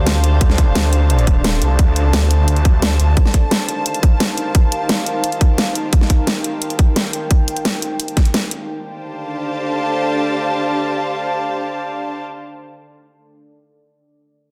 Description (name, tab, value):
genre	dark technical drum and bass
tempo	174 BPM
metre	4/4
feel	straight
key	D phrygian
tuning	A4 = 440 Hz
part	deep dark ambient pad	sustained chords	0.0-12.2 s	D4 to G5	-28 LUFS	equal	chorus, built-in reverb, sidechain pumping
part	detuned saw bass	bass	0.0-3.2 s	Eb1 to D2	-17 LUFS	equal	chorus, overdrive, sidechain pumping
part	warm studio string section	texture	0.0-12.2 s	Eb3 to A5	-26 LUFS	equal	sidechain pumping
part	dubstep drum kit	drums	0.1-8.6 s	hi-hat, snare drum	-22 LUFS	equal	small room reverb
part	electronic kick drum	drums	0.4-8.2 s	none	-15 LUFS	equal	overdrive, small room reverb
room	moderate lush hall reverb, RT60 1.9 s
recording	dense, heavily limited modern master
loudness	-17 LUFS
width	mono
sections	0.0-8.7 A section; 8.7-11.4 B section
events	fade-out on string section 0.0-8.7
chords	0.0 Dm; 3.2 Eb; 8.7 Dm